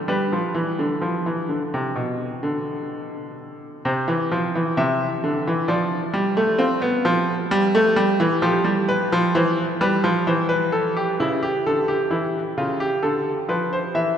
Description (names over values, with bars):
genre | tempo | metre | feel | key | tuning
classical, baroque-style two-part invention for grand piano | 65 BPM | 4/4 | straight | C major | A4 = 440 Hz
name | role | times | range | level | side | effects
bright concert grand piano | solo | 0.0-14.2 s | B2 to E5 | -19 LUFS | equal | none
room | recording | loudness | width
wet cathedral reverb, RT60 5.5 s | recorded in a church or concert hall | -19 LUFS | side -8 dB against mid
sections
0.0-3.9 A section; 3.9-11.2 B section; 11.2-14.2 A section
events
none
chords
0.1 G (rootless); 3.9 C; 5.7 Dm/F; 7.5 G; 9.3 C/E; 11.2 A7/C# (rootless); 13.0 Dm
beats
| 0.10 1.04 1.98 2.92 | 3.86 4.78 5.69 6.60 | 7.50 8.42 9.34 10.27 | 11.19 12.10 13.02 13.94